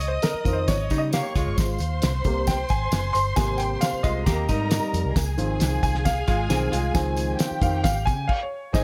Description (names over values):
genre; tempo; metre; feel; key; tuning
uptempo 1960s-style soul; 134 BPM; 4/4; straight; unclear; A4 = 440 Hz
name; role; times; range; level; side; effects
warm symphonic string section; second line; 0.0-8.8 s; G4 to Eb6; -33 LUFS; equal; none
clear upright piano; accompaniment; 0.0-8.8 s; C3 to C6; -30 LUFS; equal; none
vintage muted fingered electric bass; bass; 0.0-8.8 s; Gb1 to Db3; -29 LUFS; equal; none
cloth-damped thuddy drum kit; drums; 0.0-8.8 s; crash cymbal, hi-hat, kick drum, snare drum; -27 LUFS; equal; none
tambourine; percussion; 0.0-8.8 s; none; -42 LUFS; equal; none
vintage hollow-body jazz guitar; riff; 0.9-7.4 s; G3 to Ab4; -31 LUFS; equal; none
room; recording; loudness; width
light reverb, small room reverb; none; -24 LUFS; mono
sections
0.0-8.7 A section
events
upright piano solo 0.0-8.7; stop 8.3-8.7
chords
0.0 Dbmaj7; 1.6 Abmaj7; 5.2 Dbmaj7